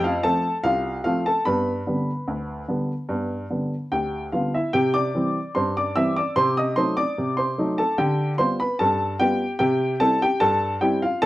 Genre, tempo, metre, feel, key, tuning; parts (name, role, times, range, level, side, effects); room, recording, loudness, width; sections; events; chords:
ragtime piano; 74 BPM; 2/4; straight; C major; A4 = 440 Hz
warm upright piano; solo; 0.0-11.3 s; C2 to E6; -20 LUFS; equal
moderate studio reverb, RT60 0.6 s; -20 LUFS; side -16 dB against mid
0.0-4.7 A section; 4.7-11.3 B section
0.0 F; 1.4 G; 4.7 C; 6.4 Cdim7; 8.0 G7/D; 9.6 C